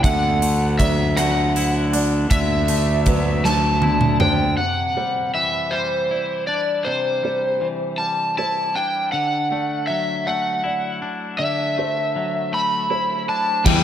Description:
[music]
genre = post-rock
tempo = 53 BPM (dotted quarters)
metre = 6/8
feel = straight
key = unclear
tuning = A4 = 440 Hz
[part]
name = overdriven slide guitar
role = melody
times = 0.0-13.8 s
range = C5 to B5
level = -21 LUFS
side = equal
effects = slapback echo, tape echo
[part]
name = felt-muted upright piano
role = arpeggios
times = 0.0-13.8 s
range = B4 to E5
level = -31 LUFS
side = right 5 dB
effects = slapback echo, tape echo
[part]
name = twangy electric guitar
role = arpeggios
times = 0.0-13.8 s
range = E2 to E4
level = -27 LUFS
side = left 2 dB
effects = spring reverb, slapback echo, tape echo
[part]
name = fuzz fingered electric bass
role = bass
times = 0.0-4.5, 13.7-13.8 s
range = D2 to E2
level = -20 LUFS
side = right 1 dB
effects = overdrive
[part]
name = big rock drum kit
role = drums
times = 0.0-4.4, 13.7-13.8 s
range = crash cymbal, hi-hat, kick drum, rim click, snare drum, toms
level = -22 LUFS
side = right 1 dB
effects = none
[part]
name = crunchy overdriven guitar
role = riff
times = 13.7-13.8 s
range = E3 to G3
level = -17 LUFS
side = left 11 dB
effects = none
[sound]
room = light reverb, studio ambience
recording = none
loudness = -18 LUFS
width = side -10 dB against mid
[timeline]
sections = 0.0-4.6 A section; 4.6-13.7 A section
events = drum fill 3.5-4.6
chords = 0.0 Dadd9; 4.6 Cadd9; 9.1 Dadd9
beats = | 0.04 1.18 | 2.31 3.45 | 4.59 5.73 | 6.86 8.00 | 9.13 10.27 | 11.40 12.53 | 13.66

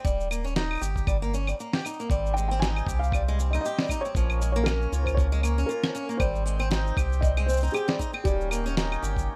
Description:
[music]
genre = folktronica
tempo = 117 BPM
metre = 4/4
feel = swing 56% on 16ths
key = Ab major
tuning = A4 = 440 Hz
[part]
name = picked swing-style acoustic guitar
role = arpeggios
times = 0.0-9.3 s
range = F3 to G4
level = -35 LUFS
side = equal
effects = digital delay
[part]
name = warm sub bass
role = bass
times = 0.0-9.3 s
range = Eb1 to Db2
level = -29 LUFS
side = equal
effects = none
[part]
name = electronic kick drum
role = drums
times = 0.0-9.3 s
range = none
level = -30 LUFS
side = equal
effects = none
[part]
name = electronic shaker, claves and snare drum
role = drums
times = 0.1-9.3 s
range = none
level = -33 LUFS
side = equal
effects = none
[part]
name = mellow accordion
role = sustained chords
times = 2.1-9.4 s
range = Eb3 to G5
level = -40 LUFS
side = equal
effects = none
[part]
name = felt-muted upright piano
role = melody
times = 2.3-9.2 s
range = G4 to Ab5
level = -35 LUFS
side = equal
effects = digital delay
[sound]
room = studio ambience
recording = none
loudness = -26 LUFS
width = mono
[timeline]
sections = 0.0-9.4 A section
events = none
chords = 0.1 Eb; 2.1 Abmaj7; 4.2 Bbm; 6.2 Abmaj7; 8.3 Eb7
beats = | 0.05 0.56 1.08 1.59 | 2.10 2.62 3.13 3.64 | 4.15 4.67 5.18 5.69 | 6.21 6.72 7.23 7.74 | 8.26 8.77 9.28

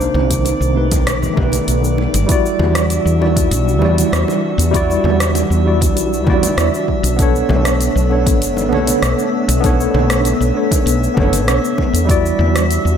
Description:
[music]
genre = sunset chillout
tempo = 98 BPM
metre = 4/4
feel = straight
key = unclear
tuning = A4 = 437 Hz
[part]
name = tine electric piano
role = accompaniment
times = 0.0-13.0 s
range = G3 to D5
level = -18 LUFS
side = moving between left 3 dB and right 4 dB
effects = medium stereo tremolo, auto-pan, tape echo, slapback echo
[part]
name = soft string machine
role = sustained chords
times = 0.0-13.0 s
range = C3 to D5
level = -22 LUFS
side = equal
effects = ensemble chorus
[part]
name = woody fretless electric bass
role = bass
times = 0.0-13.0 s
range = F#1 to E2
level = -17 LUFS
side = equal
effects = tube saturation
[part]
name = deep house drum kit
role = drums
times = 0.0-13.0 s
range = hi-hat, rim click, shaker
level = -22 LUFS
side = equal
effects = none
[part]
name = drifting glass-harmonics texture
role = texture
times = 0.0-13.0 s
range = D5 to E6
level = -29 LUFS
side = left 1 dB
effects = chorus, built-in reverb
[part]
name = congas and bongos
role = percussion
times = 0.1-12.7 s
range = none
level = -25 LUFS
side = left 3 dB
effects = none
[part]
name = electronic kick drum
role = drums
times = 0.3-12.2 s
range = none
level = -17 LUFS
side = equal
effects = none
[sound]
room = moderate lush hall reverb, RT60 1.7 s, digital ambience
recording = big arena sound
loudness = -12 LUFS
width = side -8 dB against mid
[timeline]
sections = 0.0-2.3 A section; 2.3-13.0 B section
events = filter sweep on tine electric piano 0.0-2.3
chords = 0.0 Cm9; 1.1 B7alt; 2.3 Em9; 7.2 Bm9; 12.1 Em9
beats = 0.46 1.07 1.68 | 2.29 2.90 3.52 4.13 | 4.74 5.35 5.96 6.58 | 7.19 7.80 8.41 9.03 | 9.64 10.25 10.86 11.47 | 12.09 12.70

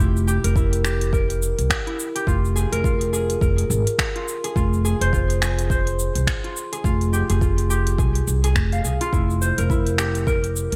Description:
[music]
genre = organic downtempo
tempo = 105 BPM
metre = 4/4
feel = swing 59% on 16ths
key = F harmonic minor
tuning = A4 = 439 Hz
[part]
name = concert harp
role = arpeggios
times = 0.0-10.8 s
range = E4 to F5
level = -28 LUFS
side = equal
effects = digital delay
[part]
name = upright bass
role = bass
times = 0.0-10.8 s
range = F1 to C2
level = -24 LUFS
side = equal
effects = sidechain pumping
[part]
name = organic electronic drum kit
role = drums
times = 0.0-10.8 s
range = cabasa, finger snaps, hi-hat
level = -30 LUFS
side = equal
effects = gated reverb
[part]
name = electronic kick drum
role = drums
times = 0.6-10.4 s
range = none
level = -25 LUFS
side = equal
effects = none
[sound]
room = light reverb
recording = bright 1980s-style digital production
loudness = -21 LUFS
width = mono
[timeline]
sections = 0.0-10.8 A section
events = none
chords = 0.0 C7/F (rootless); 2.3 Bb5/F; 4.6 Fm; 6.8 Fmadd9; 9.1 C7/F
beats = 0.56 1.13 1.70 | 2.27 2.84 3.42 3.99 | 4.56 5.13 5.70 6.27 | 6.84 7.42 7.99 8.56 | 9.13 9.70 10.27

